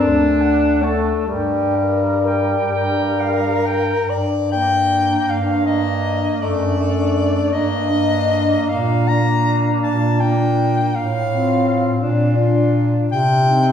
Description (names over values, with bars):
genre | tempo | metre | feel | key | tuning
classical, lyrical piece for single-reed quartet | 40-57 BPM (dotted quarters) | 6/8 | rubato | G minor | A4 = 440 Hz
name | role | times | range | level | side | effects
warm soprano saxophone | melody | 0.0-13.7 s | A4 to Bb5 | -21 LUFS | left 2 dB | none
clear alto saxophone | second line | 0.0-13.7 s | D4 to A5 | -24 LUFS | right 3 dB | none
warm tenor saxophone | accompaniment | 0.0-13.7 s | G3 to D4 | -21 LUFS | left 2 dB | none
clear bass clarinet | bass | 0.0-13.7 s | D2 to C3 | -19 LUFS | equal | none
room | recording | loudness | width
wet recital hall reverb, RT60 1.4 s | recorded in a church or concert hall, small room ambience | -15 LUFS | side -8 dB against mid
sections
0.0-4.1 A section; 4.1-13.7 B section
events
none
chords
0.0 D; 1.3 Gm; 6.4 D/F#; 7.5 Gm; 8.7 Bb; 10.9 F/A; 12.0 Bb; 13.1 Cm